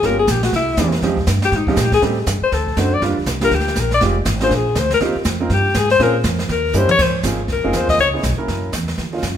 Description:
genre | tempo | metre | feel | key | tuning
jazz, small-group swing and bop | 241 BPM | 4/4 | swing 60% on 8ths | Eb major | A4 = 440 Hz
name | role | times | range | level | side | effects
clear alto saxophone | melody | 0.0-8.1 s | Eb4 to Eb5 | -18 LUFS | left 4 dB | none
warm grand piano | accompaniment | 0.0-9.2 s | F3 to Bb4 | -22 LUFS | right 3 dB | none
upright bass | bass | 0.0-9.4 s | F1 to Bb2 | -20 LUFS | equal | none
jazz brush drum kit | drums | 0.0-9.4 s | brushed snare drum, crash cymbal, hi-hat, kick drum, snare drum, toms | -23 LUFS | right 1 dB | none
room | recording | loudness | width
wet large studio reverb, RT60 1.4 s | band playing live in one room | -15 LUFS | side -9 dB against mid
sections
0.0-7.0 A section; 7.0-9.4 A section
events
alto saxophone solo 0.0-9.4; drum fill 6.7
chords
0.0 Gm7b5; 0.5 C7b13; 1.0 Fm9; 2.0 Am7b5; 2.5 D7b9; 3.0 Gm7; 4.0 Fm7; 4.5 Bb7; 5.0 Eb69; 6.0 Bbm7; 6.5 Eb7b9; 7.0 Ab6; 8.0 Dbm9; 8.5 Gb7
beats
| 0.03 0.27 0.52 0.77 | 1.02 1.27 1.52 1.77 | 2.02 2.27 2.51 2.76 | 3.01 3.26 3.51 3.76 | 4.01 4.25 4.50 4.75 | 5.00 5.25 5.50 5.75 | 5.99 6.24 6.49 6.74 | 6.99 7.24 7.49 7.73 | 7.98 8.23 8.48 8.73 | 8.98 9.23

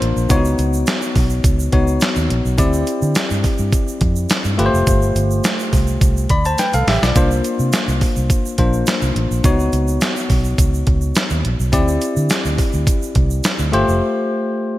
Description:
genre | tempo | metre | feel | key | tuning
early-eighties boogie funk | 105 BPM | 4/4 | straight | unclear | A4 = 445 Hz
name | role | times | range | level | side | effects
bell-like tine electric piano | accompaniment | 0.0-14.8 s | A3 to B5 | -20 LUFS | left 2 dB | none
vintage muted fingered electric bass | bass | 0.0-14.0 s | F1 to D3 | -18 LUFS | equal | none
detuned 8-bit digital drum machine | drums | 0.0-13.9 s | handclaps, hi-hat, kick drum, snare drum | -18 LUFS | equal | gated reverb
egg shaker | percussion | 0.2-14.0 s | none | -32 LUFS | right 8 dB | none
room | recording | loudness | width
light reverb | bright 1980s-style digital production | -14 LUFS | side -15 dB against mid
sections
0.0-14.8 A section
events
drum fill 6.6-7.2; break 14.0-14.8; tine electric piano fill 14.6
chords
0.3 Db9sus4; 2.6 D9sus4; 4.6 G9sus4; 7.2 C9sus4; 9.4 Db9sus4; 11.7 D9sus4; 13.7 G9sus4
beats
| 0.30 0.87 1.44 2.02 | 2.59 3.16 3.73 4.30 | 4.87 5.44 6.01 6.59 | 7.16 7.73 8.30 8.87 | 9.44 10.02 10.59 11.16 | 11.73 12.30 12.87 13.44 | 14.02 14.59

